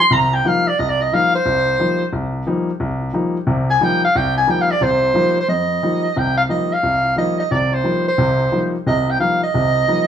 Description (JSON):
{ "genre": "jazz", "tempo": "178 BPM", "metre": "4/4", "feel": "swing 64% on 8ths", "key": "unclear", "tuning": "A4 = 440 Hz", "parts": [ { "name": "mellow soprano saxophone", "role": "melody", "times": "0.0-10.1 s", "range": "C5 to C6", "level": "-16 LUFS", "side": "right 1 dB", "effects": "none" }, { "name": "warm grand piano", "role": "accompaniment", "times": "0.1-10.1 s", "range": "C2 to Eb4", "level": "-19 LUFS", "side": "left 2 dB", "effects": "none" } ], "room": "moderate large studio reverb, RT60 0.8 s", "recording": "band playing live in one room", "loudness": "-15 LUFS", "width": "side -9 dB against mid", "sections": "0.0-5.5 A section; 5.5-10.1 B section", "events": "soprano saxophone solo 0.0-5.5", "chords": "0.0 F9sus4" }